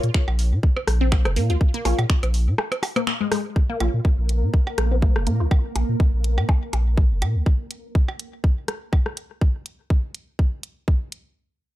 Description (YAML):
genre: minimal techno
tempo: 123 BPM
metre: 4/4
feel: swing 55% on 16ths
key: Bb minor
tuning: A4 = 440 Hz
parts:
  - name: filtered dub chord stab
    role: stabs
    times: 0.0-3.9 s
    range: Bb3 to Db5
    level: -30 LUFS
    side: left 3 dB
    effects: phaser, lush chorus, ping-pong delay
  - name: saturated sub bass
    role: bass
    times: 0.0-7.4 s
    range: F1 to Bb2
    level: -20 LUFS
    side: equal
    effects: sidechain pumping
  - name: garage drum kit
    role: drums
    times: 0.0-11.2 s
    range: finger snaps, hi-hat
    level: -30 LUFS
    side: equal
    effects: none
  - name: electronic kick drum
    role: drums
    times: 0.1-11.0 s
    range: none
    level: -18 LUFS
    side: equal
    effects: none
  - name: electronic percussion blips and rim click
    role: percussion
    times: 0.3-9.1 s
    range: none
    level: -27 LUFS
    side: equal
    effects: ping-pong delay
  - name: resonant blip pluck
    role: riff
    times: 1.0-5.4 s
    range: Ab3 to F4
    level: -27 LUFS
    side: left 2 dB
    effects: phaser, sidechain pumping, tape echo
  - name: pulsing gated texture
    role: texture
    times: 3.9-7.5 s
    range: Bb3 to Bb4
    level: -33 LUFS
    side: right 2 dB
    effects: chorus, built-in reverb, sidechain pumping
room: little or no reverb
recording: dark, warm production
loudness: -19 LUFS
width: side -15 dB against mid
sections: 0.0-3.6 A section; 3.6-11.4 B section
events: drop 0.0-3.6; break 2.6-3.6; band accent 3.1; filter sweep on synth arpeggio sound 3.6-5.5; filter sweep on synth stab 3.6-5.5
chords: none